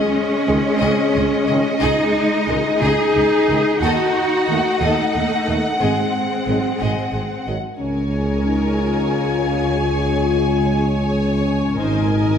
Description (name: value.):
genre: cinematic, epic orchestral film score.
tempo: 60 BPM (dotted quarters).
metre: 6/8.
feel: straight.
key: unclear.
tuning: A4 = 443 Hz.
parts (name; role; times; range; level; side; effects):
warm symphonic violin section; melody; 0.0-12.4 s; D#5 to Ab5; -25 LUFS; left 2 dB; none.
clear symphonic violin section; second line; 0.0-12.4 s; G#4 to D#5; -28 LUFS; left 3 dB; none.
rich symphonic viola section; accompaniment; 0.0-12.4 s; G#3 to Eb5; -24 LUFS; equal; none.
dark French horn section; sustained chords; 0.0-12.4 s; B#3 to G#4; -22 LUFS; left 4 dB; none.
rich symphonic cello section; bass; 0.0-12.4 s; Db2 to G#4; -24 LUFS; right 3 dB; none.
warm trombone section; sustained chords; 0.5-12.4 s; Bb2 to A3; -29 LUFS; right 2 dB; none.
dark tuba; bass; 0.5-12.4 s; G#1 to D#2; -24 LUFS; right 2 dB; none.
warm studio double bass section; bass; 0.5-12.4 s; G#1 to D#2; -26 LUFS; right 2 dB; none.
room: wet scoring stage reverb, RT60 1.6 s.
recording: none.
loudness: -16 LUFS.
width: side -8 dB against mid.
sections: 0.0-7.8 A section; 7.8-12.4 B section.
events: none.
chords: 0.0 C#sus2; 3.8 D#dim; 5.8 G#7; 7.8 Db; 11.8 Absus2.